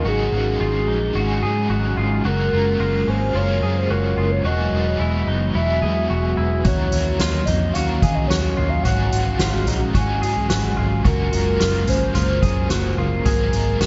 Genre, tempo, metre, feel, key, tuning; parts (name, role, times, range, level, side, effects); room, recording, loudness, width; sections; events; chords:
dream pop; 109 BPM; 4/4; straight; Gb major; A4 = 440 Hz
warbly nostalgic lead; melody; 0.0-13.9 s; Ab4 to Ab5; -27 LUFS; equal; chorus, tremolo, analog delay
raw garage guitar; accompaniment; 0.0-13.9 s; Ab2 to Bb4; -31 LUFS; equal; overdrive, tremolo, analog chorus
phased analog pad; sustained chords; 0.0-13.9 s; C3 to F5; -28 LUFS; equal; phaser, chorus
clean electric guitar; arpeggios; 0.0-13.9 s; Db4 to Ab4; -30 LUFS; equal; subtle chorus, analog delay
vintage muted fingered electric bass; bass; 0.0-13.9 s; E1 to Eb3; -24 LUFS; equal
soft-mallet drum kit; drums; 6.6-13.9 s; kick drum, snare drum, tambourine, toms; -24 LUFS; equal
moderate echo chamber reverb, RT60 2.6 s; echo-heavy mix, nothing above 7.6 kHz; -20 LUFS; mono
0.0-13.9 A section
0.0 Ab7sus4; 2.2 Gbmaj9; 4.4 Emaj9; 6.7 Ebm7; 8.9 Ab7sus4; 11.1 Gbmaj9; 13.3 Ab9